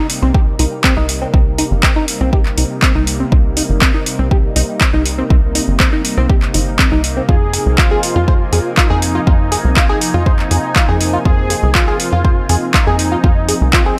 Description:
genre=melodic techno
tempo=121 BPM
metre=4/4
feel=straight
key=C minor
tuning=A4 = 441 Hz
part: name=lush unison pad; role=sustained chords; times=0.0-14.0 s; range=C3 to Ab5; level=-27 LUFS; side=equal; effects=chorus, phaser, sidechain pumping
part: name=tight sequenced synth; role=arpeggios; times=0.0-14.0 s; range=C4 to C5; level=-23 LUFS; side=equal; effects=chorus, sidechain pumping, delay
part: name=tight sequencer bass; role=bass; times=0.0-13.9 s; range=G1 to F2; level=-20 LUFS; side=equal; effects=sidechain pumping
part: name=analog drone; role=drone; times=0.1-14.0 s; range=C3 to Bb3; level=-30 LUFS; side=equal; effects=chorus, sidechain pumping
part: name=deep house drum kit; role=drums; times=0.1-13.8 s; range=handclaps, hi-hat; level=-20 LUFS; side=equal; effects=overdrive
part: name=electronic kick drum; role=drums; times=0.3-13.8 s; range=none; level=-16 LUFS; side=equal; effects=overdrive
part: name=soft supersaw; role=melody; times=7.3-14.0 s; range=C4 to Ab4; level=-24 LUFS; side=equal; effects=sidechain pumping, delay
room=little or no reverb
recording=none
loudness=-14 LUFS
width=mono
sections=0.0-14.0 A section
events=none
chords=0.0 Cm7; 7.3 Fm7

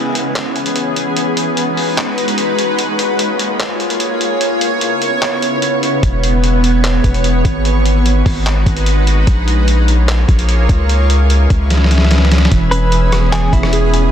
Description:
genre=hip hop, atmospheric cloud-rap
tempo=148 BPM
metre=4/4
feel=half-time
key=E lydian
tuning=A4 = 439 Hz
part: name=shimmering ambient pad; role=sustained chords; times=0.0-14.1 s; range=C#3 to E5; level=-16 LUFS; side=equal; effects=chorus, built-in reverb, sidechain pumping
part: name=lo-fi sampler-style drum kit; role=drums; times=0.2-14.0 s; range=handclaps, hi-hat, kick drum, rim click, snare drum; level=-17 LUFS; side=equal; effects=none
part: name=long sustained 808-style bass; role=bass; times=6.0-14.1 s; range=E1 to C#2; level=-12 LUFS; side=equal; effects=none
part: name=muted felt-like synth keys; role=arpeggios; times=12.5-14.1 s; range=E3 to G#4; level=-21 LUFS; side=right 6 dB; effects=chorus, tremolo, ping-pong delay
part: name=clean electric guitar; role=melody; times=12.7-14.1 s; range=E4 to B4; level=-21 LUFS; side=equal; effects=tremolo, ping-pong delay
room=little or no reverb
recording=dense, heavily limited modern master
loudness=-11 LUFS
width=side -9 dB against mid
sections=0.0-12.5 A section; 12.5-14.1 B section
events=break 0.0-6.0; drum fill 11.7-12.5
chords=0.0 E6; 1.2 G#m7; 2.8 A#m7; 4.4 C#m7; 6.0 E6; 7.7 G#m7; 9.3 A#m7; 10.9 C#m7; 12.5 E6

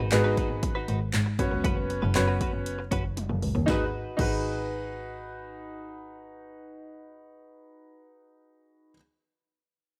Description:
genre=dance-pop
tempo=118 BPM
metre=4/4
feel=straight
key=G# minor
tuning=A4 = 440 Hz
part: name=direct-recorded clean electric guitar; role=riff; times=0.0-9.0 s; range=C#4 to B4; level=-39 LUFS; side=equal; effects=analog chorus
part: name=clear double bass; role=bass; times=0.0-8.5 s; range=F#1 to G#2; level=-32 LUFS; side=equal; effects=sidechain pumping
part: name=clear grand piano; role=accompaniment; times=0.1-9.0 s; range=B3 to C#5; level=-33 LUFS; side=equal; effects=sidechain pumping
part: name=punchy analog drum machine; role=drums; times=0.1-4.3 s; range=crash cymbal, handclaps, hi-hat, kick drum, snare drum, toms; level=-33 LUFS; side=equal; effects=overdrive
room=light reverb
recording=rough home demo mix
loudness=-28 LUFS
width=mono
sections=0.0-3.7 A section; 3.7-7.7 B section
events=drum fill 3.2-3.7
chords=0.0 G#m7; 1.4 F#sus4; 3.7 G#m7

